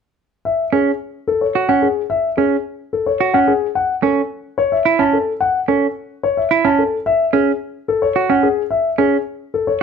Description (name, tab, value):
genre	classical, minimalist pattern music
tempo	109 BPM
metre	3/4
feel	straight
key	A major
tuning	A4 = 442 Hz
part	dark concert grand piano	melody	0.5-9.8 s	G#4 to A5	-17 LUFS	left 6 dB	none
part	semi-hollow electric guitar	arpeggios	0.7-9.2 s	C#4 to F#4	-16 LUFS	right 8 dB	none
room	light reverb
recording	dark, warm production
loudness	-15 LUFS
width	side -6 dB against mid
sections	0.5-9.8 A section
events	none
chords	0.5 Amaj7 (rootless); 3.8 C#m; 7.1 N.C.